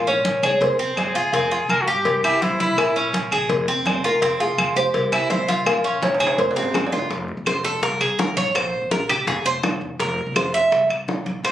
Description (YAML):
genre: latin, Cuban son and guajira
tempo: 166 BPM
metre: 4/4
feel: straight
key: F harmonic minor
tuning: A4 = 440 Hz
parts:
  - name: nylon-string guitar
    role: melody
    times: 0.0-1.1, 4.1-6.7 s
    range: Ab4 to F5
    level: -22 LUFS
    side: equal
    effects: none
  - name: Cuban tres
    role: arpeggios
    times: 0.0-11.5 s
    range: C4 to E5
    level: -22 LUFS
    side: right 2 dB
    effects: none
  - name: upright bass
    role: bass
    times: 0.0-11.5 s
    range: E1 to C3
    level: -31 LUFS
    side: equal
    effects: none
  - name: congas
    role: percussion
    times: 0.1-11.5 s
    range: none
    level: -29 LUFS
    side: left 1 dB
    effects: none
  - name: agogo bells and timbales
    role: percussion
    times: 0.2-11.5 s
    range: none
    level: -29 LUFS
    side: right 3 dB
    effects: none
  - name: cowbell and bongos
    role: percussion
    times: 0.3-11.5 s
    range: none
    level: -26 LUFS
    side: left 4 dB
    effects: none
  - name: claves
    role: percussion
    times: 0.4-11.5 s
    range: none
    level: -25 LUFS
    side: left 1 dB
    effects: none
  - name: warm trumpet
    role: second line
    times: 1.0-3.1 s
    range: E4 to Bb4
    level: -22 LUFS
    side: left 1 dB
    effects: none
room: moderate studio reverb, RT60 0.6 s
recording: recorded on a phone in the room, club reverb, compression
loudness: -18 LUFS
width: side -12 dB against mid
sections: 0.0-7.1 A section; 7.1-11.5 B section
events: drum fill 6.0-7.1; Cuban tres solo 7.1-11.5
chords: 0.0 Bbm; 0.6 Fm; 2.1 C; 2.8 Bbm; 3.5 Fm; 4.9 C; 5.7 Bbm; 6.4 Fm; 7.1 F; 7.8 Ammaj7; 8.6 Gmadd11/Bb; 9.3 Fmmaj7; 10.7 C7